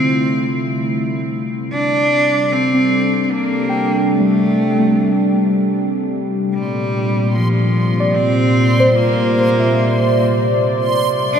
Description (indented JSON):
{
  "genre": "ambient",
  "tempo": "75 BPM",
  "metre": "3/4",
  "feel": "straight",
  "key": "unclear",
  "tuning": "A4 = 437 Hz",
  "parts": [
    { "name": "clear cello", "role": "melody", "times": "0.0-11.4 s", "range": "F3 to D4", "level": "-18 LUFS", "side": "right 1 dB", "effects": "ping-pong delay" },
    { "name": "warm analog pad", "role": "sustained chords", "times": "0.0-11.4 s", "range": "Bb2 to D5", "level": "-18 LUFS", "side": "equal", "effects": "chorus" },
    { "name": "muted felt-like synth keys", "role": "arpeggios", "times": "0.0-11.4 s", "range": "G3 to C6", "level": "-20 LUFS", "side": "equal", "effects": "chorus, ping-pong delay" },
    { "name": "analog drone", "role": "drone", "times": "0.0-11.4 s", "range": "C3 to G3", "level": "-24 LUFS", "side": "left 1 dB", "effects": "chorus" },
    { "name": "backwards swelling texture", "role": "texture", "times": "7.3-11.4 s", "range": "C6", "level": "-26 LUFS", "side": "right 3 dB", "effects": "built-in reverb" }
  ],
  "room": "wet huge ambient reverb, RT60 9.0 s",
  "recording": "cassette tape",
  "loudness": "-14 LUFS",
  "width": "side -7 dB against mid",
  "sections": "0.0-11.4 A section",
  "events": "filter sweep on analog synth pad 0.0-11.4",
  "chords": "0.0 Dm; 6.5 Bb"
}